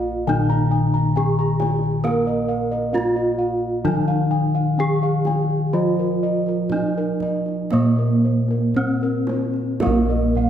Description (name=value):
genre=Javanese gamelan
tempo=56-68 BPM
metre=4/4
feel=straight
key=Bb slendro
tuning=A4 = 441 Hz
part: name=gamelan-type bronze metallophone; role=melody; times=0.0-10.5 s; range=Bb3 to Bb4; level=-24 LUFS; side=right 1 dB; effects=none
part: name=gamelan-type bronze metallophone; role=accompaniment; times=0.0-10.5 s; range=Eb3-35c to Bb3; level=-22 LUFS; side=equal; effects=none
part: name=gamelan-type bossed gongs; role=arpeggios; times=0.0-10.5 s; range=Bb4 to Bb5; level=-26 LUFS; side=equal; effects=none
part: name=gamelan-type bossed gongs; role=bass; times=0.0-10.5 s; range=Bb1 to Bb4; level=-24 LUFS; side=equal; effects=none
part: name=kendang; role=percussion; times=0.3-10.5 s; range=none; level=-32 LUFS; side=right 3 dB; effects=none
part: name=gamelan-type bronze metallophone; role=arpeggios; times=9.8-10.5 s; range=Bb4 to F5+25c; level=-27 LUFS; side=right 6 dB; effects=none
room=wet concert hall reverb, RT60 1.7 s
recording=none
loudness=-18 LUFS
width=side -9 dB against mid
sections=0.0-9.8 A section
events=none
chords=none